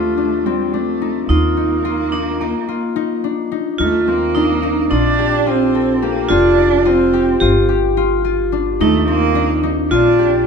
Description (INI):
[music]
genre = contemporary instrumental, chamber music in an uneven meter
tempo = 216 BPM (eighths)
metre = 9/8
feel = straight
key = Eb lydian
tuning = A4 = 441 Hz
[part]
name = warm cello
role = melody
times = 0.0-10.4 s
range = G3 to D4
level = -20 LUFS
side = right 7 dB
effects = none
[part]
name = vibraphone with hard mallets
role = second line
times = 0.0-10.5 s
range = Bb3 to G4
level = -18 LUFS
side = right 3 dB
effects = none
[part]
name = concert harp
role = arpeggios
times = 0.0-10.5 s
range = C4 to A4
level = -18 LUFS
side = left 11 dB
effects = none
[part]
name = upright bass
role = bass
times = 0.0-10.5 s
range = F1 to Eb2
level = -21 LUFS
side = right 2 dB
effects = none
[sound]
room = moderate recital hall reverb, RT60 1.6 s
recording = none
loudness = -13 LUFS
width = side -6 dB against mid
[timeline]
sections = 0.0-3.8 A section; 3.8-10.5 B section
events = break 2.5-3.8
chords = 0.0 F5/Eb; 1.3 Eb5; 4.9 Bbadd9; 6.3 Fsus2; 7.4 G5; 8.8 Eb5; 9.9 Bbadd9